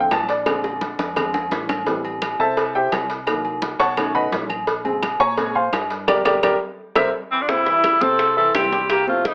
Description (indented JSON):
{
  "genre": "Afro-Cuban jazz",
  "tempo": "171 BPM",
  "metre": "4/4",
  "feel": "straight",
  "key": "unclear",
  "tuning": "A4 = 440 Hz",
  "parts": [
    { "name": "dark baby grand piano", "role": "accompaniment", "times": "0.0-9.3 s", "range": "C3 to Db6", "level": "-23 LUFS", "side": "equal", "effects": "none" },
    { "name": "hollow-body short-scale fingered electric bass", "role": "bass", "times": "0.0-9.3 s", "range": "G1 to Bb2", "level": "-39 LUFS", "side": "equal", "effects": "none" },
    { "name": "claves", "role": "percussion", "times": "0.1-9.1 s", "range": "none", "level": "-33 LUFS", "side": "equal", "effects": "none" },
    { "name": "congas", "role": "percussion", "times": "0.1-9.3 s", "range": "none", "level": "-37 LUFS", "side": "equal", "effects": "none" },
    { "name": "cowbell and bongos", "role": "percussion", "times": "0.1-9.3 s", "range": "none", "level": "-28 LUFS", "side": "equal", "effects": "none" },
    { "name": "timbales and agogo bells", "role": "percussion", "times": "0.1-9.3 s", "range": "none", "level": "-29 LUFS", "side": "equal", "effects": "none" },
    { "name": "bright alto saxophone", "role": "melody", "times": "7.3-9.3 s", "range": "C4 to A4", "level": "-20 LUFS", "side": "equal", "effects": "none" },
    { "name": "trombone with metal mute", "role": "second line", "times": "7.3-9.3 s", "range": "E3 to C4", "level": "-29 LUFS", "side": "equal", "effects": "none" }
  ],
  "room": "moderate club reverb, RT60 0.7 s",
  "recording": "AM radio sound",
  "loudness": "-20 LUFS",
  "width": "mono",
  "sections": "0.0-7.5 A section; 7.5-9.3 B section",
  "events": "grand piano solo 0.0-7.5; drum fill 0.5-1.9, 6.4-7.5; band accent 6.1-7.5",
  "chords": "0.5 Bb9; 1.9 Am7; 3.3 Cm7b5; 4.0 B9; 4.7 Bbm9; 6.1 Gm; 6.8 C7; 7.5 C6"
}